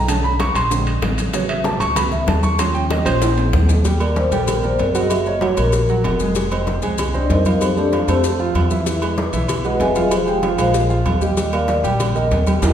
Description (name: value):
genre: Afro-Cuban jazz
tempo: 191 BPM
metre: 4/4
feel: straight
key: Eb major from 3.8 s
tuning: A4 = 440 Hz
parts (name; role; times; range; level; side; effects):
- warm concert grand piano; accompaniment; 0.0-12.7 s; C#3 to Db6; -21 LUFS; right 3 dB; none
- upright bass; bass; 0.0-12.7 s; F1 to F2; -20 LUFS; equal; none
- bongos and cowbell; percussion; 0.1-12.7 s; none; -29 LUFS; left 4 dB; none
- congas; percussion; 0.1-12.7 s; none; -26 LUFS; left 1 dB; none
- maracas; percussion; 0.1-12.7 s; none; -33 LUFS; left 6 dB; none
- timbales and agogo bells; percussion; 0.1-12.7 s; none; -27 LUFS; right 2 dB; none
- vibraphone with soft mallets; melody; 4.2-12.4 s; C4 to G#5; -20 LUFS; left 2 dB; none
room: wet recital hall reverb, RT60 1.5 s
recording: recorded in a church or concert hall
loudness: -15 LUFS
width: side -9 dB against mid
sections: 0.0-3.8 A section; 3.8-12.7 A section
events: grand piano solo 0.0-3.8; drum fill 3.2-3.8; vibraphone solo 3.8-12.7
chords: 0.1 Bm7; 0.7 Bb9; 1.3 A6; 2.6 Eb7; 3.8 Ebmaj7; 5.1 Gbadd9; 6.4 Fm7; 7.6 F69; 8.9 Emaj9; 10.1 Fm; 10.7 Bb5; 11.4 Ebmaj7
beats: | 0.09 0.40 0.71 1.02 | 1.34 1.65 1.97 2.28 | 2.59 2.91 3.22 3.53 | 3.85 4.16 4.48 4.79 | 5.10 5.42 5.73 6.04 | 6.36 6.67 6.99 7.30 | 7.61 7.92 8.24 8.55 | 8.86 9.18 9.49 9.80 | 10.12 10.43 10.74 11.06 | 11.37 11.68 12.00 12.31 | 12.62